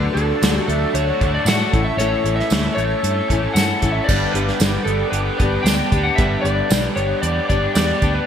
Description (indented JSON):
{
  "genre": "folk rock and heartland rock",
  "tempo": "115 BPM",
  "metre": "4/4",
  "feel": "straight",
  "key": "unclear",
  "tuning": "A4 = 440 Hz",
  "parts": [
    { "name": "electric slide guitar", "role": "melody", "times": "0.0-8.3 s", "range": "A4 to G5", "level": "-22 LUFS", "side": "left 2 dB", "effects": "digital delay" },
    { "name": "picked steel-string acoustic guitar", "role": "accompaniment", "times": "0.0-8.3 s", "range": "G2 to A4", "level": "-25 LUFS", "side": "left 3 dB", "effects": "none" },
    { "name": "accordion", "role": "sustained chords", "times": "0.0-8.2 s", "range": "D4 to C#6", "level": "-31 LUFS", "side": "right 2 dB", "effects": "none" },
    { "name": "raw garage guitar", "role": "riff", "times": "0.0-8.3 s", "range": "G2 to A4", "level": "-25 LUFS", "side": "right 1 dB", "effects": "overdrive, ensemble chorus" },
    { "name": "fingered electric bass", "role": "bass", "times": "0.0-8.2 s", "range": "G1 to A2", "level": "-22 LUFS", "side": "equal", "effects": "none" },
    { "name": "soft brush drum kit", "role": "drums", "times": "0.2-8.1 s", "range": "crash cymbal, hi-hat, kick drum, snare drum", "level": "-21 LUFS", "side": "right 1 dB", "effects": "gated reverb" },
    { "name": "tambourine", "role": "percussion", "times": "0.4-7.9 s", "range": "none", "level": "-30 LUFS", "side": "right 7 dB", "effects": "none" }
  ],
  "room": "light reverb, studio reverb",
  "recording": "bright 1980s-style digital production",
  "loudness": "-16 LUFS",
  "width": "side -8 dB against mid",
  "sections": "0.0-8.3 A section",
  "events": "none",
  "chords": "0.0 D; 1.7 A; 4.1 G"
}